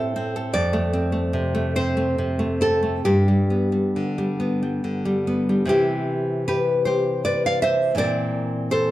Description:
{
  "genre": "romantic piece for solo classical guitar",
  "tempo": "44-55 BPM (dotted quarters)",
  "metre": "6/8",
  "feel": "rubato",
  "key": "C major",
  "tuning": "A4 = 440 Hz",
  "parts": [
    { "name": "nylon-string guitar", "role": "solo", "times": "0.0-8.9 s", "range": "F2 to F5", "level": "-20 LUFS", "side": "equal", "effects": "none" }
  ],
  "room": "moderate recital hall reverb, RT60 1.4 s",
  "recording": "dark, warm production",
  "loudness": "-20 LUFS",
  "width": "side -14 dB against mid",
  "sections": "0.0-5.7 A section; 5.7-8.9 B section",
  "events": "none",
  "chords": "0.0 Am; 0.5 Dm7/F; 3.0 G; 5.7 C; 8.0 C7/Bb"
}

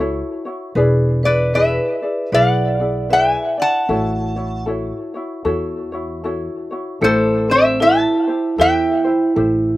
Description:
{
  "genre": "Hawaiian",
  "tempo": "77 BPM",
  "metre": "4/4",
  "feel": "swing 61% on 8ths",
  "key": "A major",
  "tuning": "A4 = 440 Hz",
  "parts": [
    { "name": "ukulele", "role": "accompaniment", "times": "0.0-9.8 s", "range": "E4 to D5", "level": "-22 LUFS", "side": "left 2 dB", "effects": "slapback echo" },
    { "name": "upright bass", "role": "bass", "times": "0.0-9.8 s", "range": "E1 to E2", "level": "-22 LUFS", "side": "equal", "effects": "none" },
    { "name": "vibraphone with hard mallets", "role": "second line", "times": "1.2-9.8 s", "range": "A3 to F#5", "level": "-20 LUFS", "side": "right 3 dB", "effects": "slapback echo" },
    { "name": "metal-body resonator slide guitar", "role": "melody", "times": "1.3-9.8 s", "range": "A4 to A5", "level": "-16 LUFS", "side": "left 1 dB", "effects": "slapback echo" }
  ],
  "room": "little or no reverb",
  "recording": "recorded outdoors, with no room sound",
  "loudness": "-15 LUFS",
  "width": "side -16 dB against mid",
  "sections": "0.0-7.0 A section; 7.0-9.8 B section",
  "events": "none",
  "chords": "0.0 F#m7; 0.8 E7; 3.9 A6; 7.0 Am7"
}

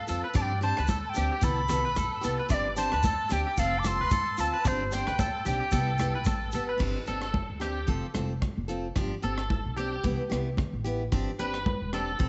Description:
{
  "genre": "highlife guitar band",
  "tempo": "111 BPM",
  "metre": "4/4",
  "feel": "swing 55% on 16ths",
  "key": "G mixolydian",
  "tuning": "A4 = 439 Hz",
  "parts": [
    { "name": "bright reedy wooden flute", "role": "melody", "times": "0.0-6.5 s", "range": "C5 to D6", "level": "-32 LUFS", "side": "equal", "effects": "none" },
    { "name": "electric guitar at the edge of break-up", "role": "arpeggios", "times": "0.0-12.2 s", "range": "G4 to D5", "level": "-37 LUFS", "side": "equal", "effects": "ensemble chorus" },
    { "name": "picked steel-string acoustic guitar", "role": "accompaniment", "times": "0.1-12.3 s", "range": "E3 to A4", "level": "-37 LUFS", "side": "equal", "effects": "none" },
    { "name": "upright bass", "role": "bass", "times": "0.1-12.3 s", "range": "E1 to G2", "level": "-35 LUFS", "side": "equal", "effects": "none" },
    { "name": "tight funk drum kit", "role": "drums", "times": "0.1-12.3 s", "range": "crash cymbal, hi-hat, kick drum, rim click", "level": "-34 LUFS", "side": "equal", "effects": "none" },
    { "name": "shekere", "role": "percussion", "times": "0.1-6.7 s", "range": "none", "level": "-40 LUFS", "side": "equal", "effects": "none" },
    { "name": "congas", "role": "percussion", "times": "0.4-12.3 s", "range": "none", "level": "-38 LUFS", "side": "equal", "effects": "none" }
  ],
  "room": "light reverb, small room ambience",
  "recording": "nothing above 8.0 kHz",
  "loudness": "-29 LUFS",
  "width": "mono",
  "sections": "0.0-6.8 A section; 6.8-12.3 B section",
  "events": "clean electric guitar solo 6.8-12.3",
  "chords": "0.4 G7sus4; 1.4 Cmaj7; 2.5 G7sus4; 3.6 F; 4.7 Gsus4; 5.7 Cmaj7; 6.8 G7sus4; 7.9 F; 9.0 G7sus4; 10.0 Cmaj7; 11.1 G7sus4"
}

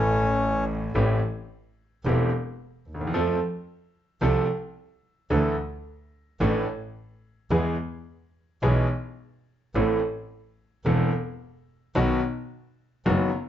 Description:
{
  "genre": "tango",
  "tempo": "109 BPM",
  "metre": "4/4",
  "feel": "rubato",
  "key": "A minor",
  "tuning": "A4 = 440 Hz",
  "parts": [
    { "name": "bandoneon", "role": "melody", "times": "0.0-0.6 s", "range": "C#4 to C#5", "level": "-25 LUFS", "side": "left 2 dB", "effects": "none" },
    { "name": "clear concert grand piano", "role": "accompaniment", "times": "0.0-13.3 s", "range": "E1 to A4", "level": "-25 LUFS", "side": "equal", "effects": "none" },
    { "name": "clear double bass", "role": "bass", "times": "0.0-13.3 s", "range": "E1 to F2", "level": "-27 LUFS", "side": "right 1 dB", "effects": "none" }
  ],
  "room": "light reverb",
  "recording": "dark, warm production, nothing above 7.7 kHz",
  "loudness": "-23 LUFS",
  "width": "side -11 dB against mid",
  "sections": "0.9-13.5 A section",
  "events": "none",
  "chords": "0.0 A; 0.9 Am7; 3.1 F; 5.3 Dsus2; 7.5 E; 9.8 Am; 12.0 B"
}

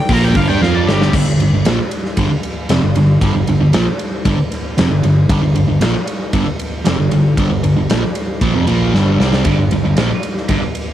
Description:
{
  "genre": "hard rock",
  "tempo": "115 BPM",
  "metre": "4/4",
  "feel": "straight",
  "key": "unclear",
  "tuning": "A4 = 440 Hz",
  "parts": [
    { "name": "biting lead guitar", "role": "melody", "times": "0.0-1.1 s", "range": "G4 to Bb5", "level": "-23 LUFS", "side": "left 2 dB", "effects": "overdrive, cassette tape, plate reverb, analog delay" },
    { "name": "crunchy overdriven guitar", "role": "riff", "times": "0.1-10.7 s", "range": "F2 to F4", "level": "-17 LUFS", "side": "right 4 dB", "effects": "spring reverb" },
    { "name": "heavy high-gain guitar", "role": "riff", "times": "0.1-1.1, 9.5-10.7 s", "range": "G2 to F4", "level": "-25 LUFS", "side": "right 2 dB", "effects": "distortion" },
    { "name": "sludgy distorted guitar", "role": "riff", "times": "0.1-10.7 s", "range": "F2 to F4", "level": "-19 LUFS", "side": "left 6 dB", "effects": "overdrive" },
    { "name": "fingered electric bass", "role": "bass", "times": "0.1-10.6 s", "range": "F1 to G2", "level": "-18 LUFS", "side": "equal", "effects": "none" },
    { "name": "huge arena drum kit", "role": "drums", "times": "0.1-10.9 s", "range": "crash cymbal, hi-hat, kick drum, ride cymbal, snare drum", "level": "-18 LUFS", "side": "equal", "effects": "none" }
  ],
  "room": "moderate booth ambience, RT60 0.2 s",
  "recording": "home recording on cassette",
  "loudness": "-12 LUFS",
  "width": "side -12 dB against mid",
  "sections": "0.0-1.1 A section; 1.1-10.9 B section",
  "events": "lead electric guitar solo 0.0-1.1; drum fill 0.6-1.1, 8.9-9.5",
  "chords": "0.0 G5"
}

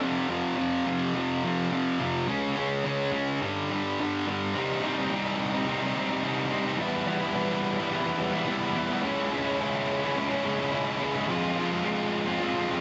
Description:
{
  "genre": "rock",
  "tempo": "107 BPM",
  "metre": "4/4",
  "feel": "straight",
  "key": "unclear",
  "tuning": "A4 = 442 Hz",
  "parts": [
    { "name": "fuzz guitar", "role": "solo", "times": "0.0-12.8 s", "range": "F2 to F4", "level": "-28 LUFS", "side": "equal", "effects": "distortion, digital delay" }
  ],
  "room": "moderate studio reverb, RT60 0.6 s",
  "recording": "heavily compressed radio sound, multiband compression, nothing above 7.9 kHz",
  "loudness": "-28 LUFS",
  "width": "mono",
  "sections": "0.0-4.5 A section; 4.5-12.8 B section",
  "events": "none",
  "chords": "0.0 F5; 2.3 C#5; 3.4 G5; 4.5 Cm; 6.8 Em; 9.0 C#m; 11.3 Fm"
}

